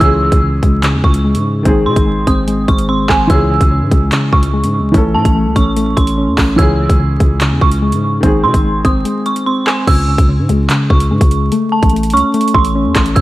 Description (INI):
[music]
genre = hip hop, drill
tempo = 146 BPM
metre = 4/4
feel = half-time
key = C# harmonic minor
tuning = A4 = 440 Hz
[part]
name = dark detuned synth bell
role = second line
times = 0.0-13.2 s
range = G#5 to E6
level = -18 LUFS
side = right 3 dB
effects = chorus, phaser, tape echo
[part]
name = felt-muted upright piano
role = accompaniment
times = 0.0-9.9 s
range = D#3 to A4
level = -19 LUFS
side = equal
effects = low-pass filter
[part]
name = soft electric-piano-like synth keys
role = arpeggios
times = 0.0-13.2 s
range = C#3 to C#4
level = -16 LUFS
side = left 1 dB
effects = chorus, low-pass filter, tape echo
[part]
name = growling 808-style bass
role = bass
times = 0.0-13.2 s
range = G#1 to B#2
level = -17 LUFS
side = equal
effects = none
[part]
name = drill drum kit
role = drums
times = 0.0-13.2 s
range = crash cymbal, handclaps, hi-hat, kick drum, rim click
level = -14 LUFS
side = equal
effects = none
[sound]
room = light reverb, digital ambience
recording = vinyl crackle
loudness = -10 LUFS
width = side -16 dB against mid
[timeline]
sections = 0.0-9.9 A section; 9.9-13.2 B section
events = break 9.1-9.9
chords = 0.0 C#m; 1.7 G#; 3.3 C#m; 4.9 A; 6.6 C#m; 8.2 G#; 9.9 C#m; 11.5 A